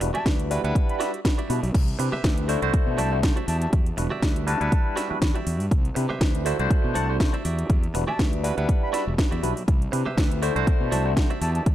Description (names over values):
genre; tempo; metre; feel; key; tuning
filtered disco house; 121 BPM; 4/4; swing 55% on 16ths; E minor; A4 = 440 Hz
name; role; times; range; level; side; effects
barky tine electric piano; accompaniment; 0.0-11.3 s; G3 to F#5; -28 LUFS; equal; medium stereo tremolo, phaser, sidechain pumping
direct-recorded clean electric guitar; riff; 0.0-11.7 s; F#4 to F#5; -33 LUFS; right 4 dB; sidechain pumping
fuzz fingered electric bass; bass; 0.0-11.7 s; E1 to C3; -27 LUFS; equal; overdrive, sidechain pumping
house drum kit; drums; 0.0-11.7 s; crash cymbal, hi-hat, snare drum; -31 LUFS; equal; overdrive
bright reedy jazz flute; melody; 0.1-11.6 s; A5 to B5; -32 LUFS; left 2 dB; sidechain pumping
electronic kick drum; drums; 0.3-11.7 s; none; -22 LUFS; equal; overdrive
room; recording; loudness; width
little or no reverb; none; -21 LUFS; side -12 dB against mid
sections
0.0-11.7 A section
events
none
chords
0.0 Em9; 1.7 Cmaj7; 2.5 D9; 3.5 Em9; 5.7 Cmaj7; 6.5 D9; 7.4 Em9; 9.7 Cmaj7; 10.4 D9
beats
0.26 0.75 1.25 | 1.75 2.24 2.74 3.23 | 3.73 4.22 4.72 5.22 | 5.71 6.21 6.71 7.20 | 7.70 8.19 8.69 9.18 | 9.68 10.18 10.67 11.17 | 11.66